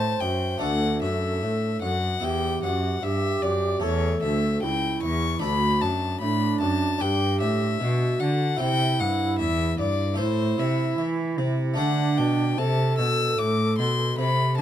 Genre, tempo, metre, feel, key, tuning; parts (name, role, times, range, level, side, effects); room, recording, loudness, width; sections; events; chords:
classical, baroque-style sonata movement with continuo; 75 BPM; 4/4; rubato; A4 = 439 Hz
rich violin; melody; 0.0-14.6 s; C5 to E6; -28 LUFS; left 5 dB
baroque flute; second line; 0.0-14.6 s; D4 to C5; -28 LUFS; right 4 dB
harpsichord; accompaniment; 0.0-14.6 s; C#2 to C5; -30 LUFS; left 2 dB
dark cello; bass; 0.0-14.6 s; C#2 to E3; -26 LUFS; right 1 dB
little or no reverb; close, detailed microphones; -22 LUFS; side -11 dB against mid
0.0-14.6 A section
0.0 Am; 0.6 D; 2.2 Em; 3.8 A; 5.4 D; 7.0 G; 8.6 C; 10.2 Am; 11.8 D5